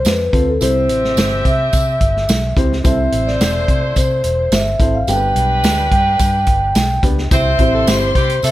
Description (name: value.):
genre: uptempo 1960s-style soul.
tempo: 108 BPM.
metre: 4/4.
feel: straight.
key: C major.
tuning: A4 = 440 Hz.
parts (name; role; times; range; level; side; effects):
clear saxophone section; second line; 0.0-8.5 s; G3 to E5; -24 LUFS; equal; none.
tambourine; percussion; 0.0-8.5 s; none; -29 LUFS; right 4 dB; none.
vibraphone with soft mallets; melody; 0.1-8.5 s; A4 to G5; -18 LUFS; equal; tape echo.
vintage muted fingered electric bass; bass; 0.1-8.5 s; E1 to C3; -19 LUFS; equal; none.
vintage drum kit; drums; 0.1-8.5 s; hi-hat, kick drum, snare drum; -17 LUFS; equal; none.
dark upright piano; accompaniment; 0.3-8.2 s; G2 to C5; -21 LUFS; equal; none.
warm studio string section; second line; 7.3-8.5 s; C5 to C6; -24 LUFS; left 3 dB; none.
room: light reverb.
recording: none.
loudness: -13 LUFS.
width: side -15 dB against mid.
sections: 0.0-7.3 A section; 7.3-8.5 B section.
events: none.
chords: 0.0 F; 0.6 C; 2.8 Am; 5.1 G; 7.3 C.